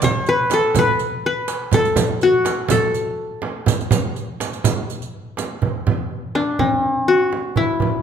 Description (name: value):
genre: Arabic maqam ensemble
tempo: 123 BPM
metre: 4/4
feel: straight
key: A maqam rast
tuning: A4 = 440 Hz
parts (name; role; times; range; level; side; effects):
- qanun; melody; 0.0-8.0 s; C4+50c to D5; -17 LUFS; left 2 dB; none
- darbuka; percussion; 0.0-7.9 s; none; -24 LUFS; right 4 dB; none
- frame drum; percussion; 0.0-7.9 s; none; -24 LUFS; right 5 dB; none
- riq; percussion; 0.0-5.5 s; none; -29 LUFS; right 7 dB; none
room: moderate recital hall reverb, RT60 1.4 s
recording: minimal, uncompressed stereo recording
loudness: -17 LUFS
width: side -8 dB against mid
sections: 0.0-5.6 A section; 5.6-8.0 B section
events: none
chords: none